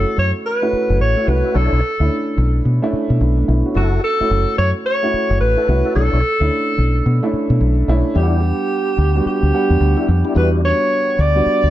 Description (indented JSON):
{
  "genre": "R&B",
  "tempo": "109 BPM",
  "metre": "4/4",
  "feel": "swing 62% on 16ths",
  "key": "E dorian",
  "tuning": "A4 = 439 Hz",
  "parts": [
    { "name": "breathy alto saxophone", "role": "melody", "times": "0.0-11.7 s", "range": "F#4 to D5", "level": "-19 LUFS", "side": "equal", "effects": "none" },
    { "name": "dark baby grand piano", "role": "accompaniment", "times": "0.0-11.7 s", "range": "G3 to F#5", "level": "-21 LUFS", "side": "right 2 dB", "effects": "none" },
    { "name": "deep dub fingered electric bass", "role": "bass", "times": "0.0-11.7 s", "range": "F#1 to B2", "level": "-15 LUFS", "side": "equal", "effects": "none" },
    { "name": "tonewheel organ", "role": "stabs", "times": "1.2-10.6 s", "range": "A3 to C#5", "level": "-25 LUFS", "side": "left 4 dB", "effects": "overdrive, chorus vibrato, slow rotary speaker" }
  ],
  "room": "light reverb, studio ambience",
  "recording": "dark, warm production, nothing above 7.8 kHz",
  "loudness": "-14 LUFS",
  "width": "side -13 dB against mid",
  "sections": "0.0-8.2 A section; 8.2-11.7 B section",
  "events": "none",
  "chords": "0.0 F#m7; 1.6 Bm11; 3.8 F#m7; 6.0 Bm11; 8.2 Em7",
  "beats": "0.45 1.00 | 1.55 2.10 2.65 3.20 | 3.75 4.30 4.85 5.40 | 5.95 6.50 7.05 7.61 | 8.16 8.71 9.26 9.81 | 10.36 10.91 11.46"
}